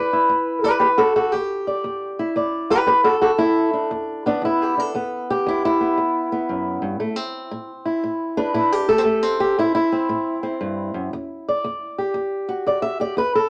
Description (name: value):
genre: acoustic country blues, solo or duo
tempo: 116 BPM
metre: 4/4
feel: swing 65% on 8ths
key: E minor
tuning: A4 = 440 Hz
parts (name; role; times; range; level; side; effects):
- fingerpicked old ladder-braced acoustic guitar; solo; 0.0-13.5 s; E2 to E5; -21 LUFS; equal; none
room: moderate studio ambience, RT60 0.5 s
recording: none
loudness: -21 LUFS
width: mono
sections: 0.0-13.5 A section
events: none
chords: 0.0 Em9; 7.0 Am9; 11.1 Em9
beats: 0.31 | 0.82 1.34 1.85 2.37 | 2.88 3.40 3.91 4.43 | 4.94 5.46 5.97 6.49 | 7.00 7.52 8.03 8.55 | 9.06 9.58 10.09 10.61 | 11.12 11.63 12.15 12.66 | 13.17